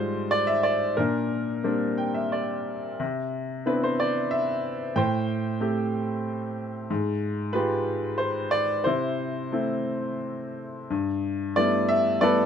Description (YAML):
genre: classical, lyrical solo piano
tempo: 91 BPM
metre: 3/4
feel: rubato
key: C major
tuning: A4 = 441 Hz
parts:
  - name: clear grand piano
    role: solo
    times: 0.0-12.5 s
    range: G2 to G5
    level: -24 LUFS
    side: equal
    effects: none
room: light reverb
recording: close, detailed microphones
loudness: -24 LUFS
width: side -8 dB against mid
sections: 0.0-10.9 A section; 10.9-12.5 B section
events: grand piano fill 1.6-3.0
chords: 0.0 Fmadd9/Ab; 1.0 Bb69; 3.0 Cmaj9; 5.0 Am7; 6.9 Fmadd9/Ab; 8.9 C6; 10.9 G69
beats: 0.33 | 0.97 1.64 2.33 | 3.00 3.67 4.32 | 4.96 5.61 6.25 | 6.90 7.54 8.20 | 8.86 9.52 10.21 | 10.90 11.57 12.22